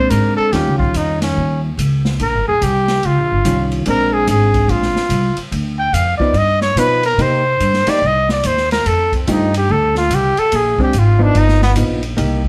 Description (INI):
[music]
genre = jazz, small-group swing and bop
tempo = 144 BPM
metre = 4/4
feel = swing 64% on 8ths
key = Bb mixolydian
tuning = A4 = 440 Hz
[part]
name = breathy trumpet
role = melody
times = 0.0-11.7 s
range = B3 to G5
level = -18 LUFS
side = equal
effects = none
[part]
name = hollow-body jazz guitar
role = accompaniment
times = 0.0-12.4 s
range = Eb3 to G4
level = -22 LUFS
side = equal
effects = none
[part]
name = upright bass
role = bass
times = 0.0-12.5 s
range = Eb1 to C3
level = -20 LUFS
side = equal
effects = none
[part]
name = open jazz drum kit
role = drums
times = 0.1-12.5 s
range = hi-hat, kick drum, ride cymbal, snare drum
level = -27 LUFS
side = equal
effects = none
[sound]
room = moderate studio reverb, RT60 0.8 s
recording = heard from further back in the room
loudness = -15 LUFS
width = mono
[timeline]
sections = 0.0-12.5 A section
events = trumpet solo 0.0-12.5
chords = 0.0 Bb9; 0.5 Eb9; 3.9 Bb9; 5.5 Dm; 6.4 Gaug7; 7.2 Cm7; 8.9 F9; 10.5 Bb9; 11.4 G7alt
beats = 0.11 | 0.53 0.94 1.36 1.78 | 2.20 2.61 3.03 3.44 | 3.86 4.28 4.70 5.11 | 5.53 5.94 6.36 6.78 | 7.19 7.61 8.03 8.44 | 8.86 9.27 9.69 10.11 | 10.52 10.94 11.36 11.77 | 12.19